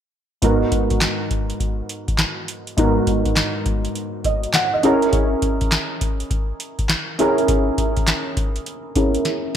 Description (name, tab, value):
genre	R&B, new jack swing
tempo	102 BPM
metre	4/4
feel	swing 64% on 16ths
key	G# minor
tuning	A4 = 437 Hz
part	dark baby grand piano	accompaniment	0.4-9.6 s	G#2 to F#5	-20 LUFS	right 1 dB	analog chorus
part	booming analog drum machine	drums	0.4-9.4 s	handclaps, hi-hat, kick drum, snare drum	-20 LUFS	equal	gated reverb
room	moderate plate reverb, RT60 2.1 s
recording	bright 1980s-style digital production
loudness	-18 LUFS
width	side -9 dB against mid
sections	0.4-9.6 A section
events	drum fill 9.2-9.6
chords	0.4 G#m9; 4.8 A#m7b5